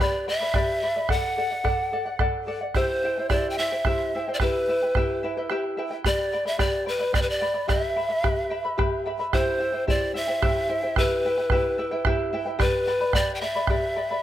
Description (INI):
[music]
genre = andean folk, Andean ensemble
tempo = 73 BPM (dotted quarters)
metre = 6/8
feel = straight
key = unclear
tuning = A4 = 442 Hz
[part]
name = breathy mellow polished pan flute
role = melody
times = 0.0-14.2 s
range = B4 to G5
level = -25 LUFS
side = equal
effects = none
[part]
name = charango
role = accompaniment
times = 0.0-14.2 s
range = E4 to B5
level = -28 LUFS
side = left 1 dB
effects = none
[part]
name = bombo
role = percussion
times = 0.1-13.9 s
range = none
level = -26 LUFS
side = right 1 dB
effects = none
[sound]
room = light reverb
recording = close, detailed microphones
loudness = -22 LUFS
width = side -12 dB against mid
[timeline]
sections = 0.0-9.3 A section; 9.3-14.2 A section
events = none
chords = 0.0 G; 1.1 D; 2.8 C; 4.4 Em; 6.1 G; 7.7 Em; 9.3 C; 11.0 Em; 12.6 G